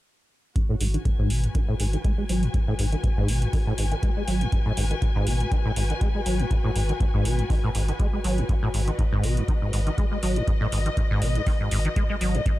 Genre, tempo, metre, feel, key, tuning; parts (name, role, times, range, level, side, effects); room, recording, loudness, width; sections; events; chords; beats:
acid house; 121 BPM; 4/4; swing 55% on 16ths; G# minor; A4 = 437 Hz
acid bass, saw; riff; 0.6-12.5 s; G#2 to G#3; -27 LUFS; equal; ensemble chorus, sidechain pumping, ping-pong delay
electronic hi-hat; drums; 0.6-12.6 s; -35 LUFS; right 1 dB
electronic kick drum; drums; 0.6-12.6 s; -24 LUFS; equal
dark symphonic string section; texture; 0.6-12.6 s; F#4 to G#5; -33 LUFS; left 3 dB; sidechain pumping
saturated sub bass; bass; 0.8-12.4 s; G#1; -26 LUFS; equal; sidechain pumping
light reverb; -22 LUFS; side -16 dB against mid
0.6-12.6 A section
filter sweep on acid bass 0.6-12.6
0.6 G#m7
| 0.56 1.05 1.55 2.04 | 2.54 3.04 3.53 4.03 | 4.52 5.02 5.52 6.01 | 6.51 7.00 7.50 8.00 | 8.49 8.99 9.48 9.98 | 10.47 10.97 11.47 11.96 | 12.46